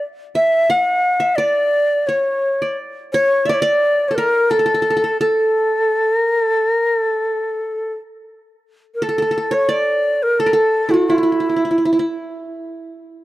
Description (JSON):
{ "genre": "turkish", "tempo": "87 BPM", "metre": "4/4", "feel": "straight", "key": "A makam hicaz", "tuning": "A4 = 441 Hz", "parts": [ { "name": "breathy bright ney", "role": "melody", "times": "0.0-12.1 s", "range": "E4 to F#5-37c", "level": "-16 LUFS", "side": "left 1 dB", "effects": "none" }, { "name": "qanun", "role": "second line", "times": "0.0-13.2 s", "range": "E4 to F#5-40c", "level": "-20 LUFS", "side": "right 2 dB", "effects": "none" } ], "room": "studio ambience", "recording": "dry, close 1970s-style studio recording", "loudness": "-15 LUFS", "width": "side -16 dB against mid", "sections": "0.0-8.3 A section; 8.3-13.2 B section", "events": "none", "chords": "none", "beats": "| 0.02 0.71 1.40 2.09 | 2.78 3.48 4.17 4.86 | 5.55 6.25 6.94 7.63 | 8.32 9.01 9.71 10.40 | 11.09 11.78 12.48 13.17" }